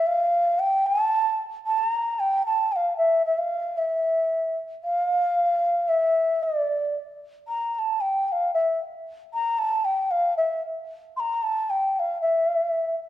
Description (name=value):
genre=indian classical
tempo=114 BPM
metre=4/4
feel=straight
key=unclear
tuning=A4 = 438 Hz
part: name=mellow bansuri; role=solo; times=0.0-12.9 s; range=D5 to C6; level=-22 LUFS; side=equal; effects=none
room=moderate recital hall reverb, RT60 1.6 s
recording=none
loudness=-22 LUFS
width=side -13 dB against mid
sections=0.0-12.2 A section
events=none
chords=none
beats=0.06 0.59 1.12 | 1.65 2.19 2.72 3.25 | 3.78 4.31 4.84 5.37 | 5.90 6.43 6.95 7.48 | 8.01 8.53 9.06 9.58 | 10.11 10.63 11.15 11.67 | 12.20 12.72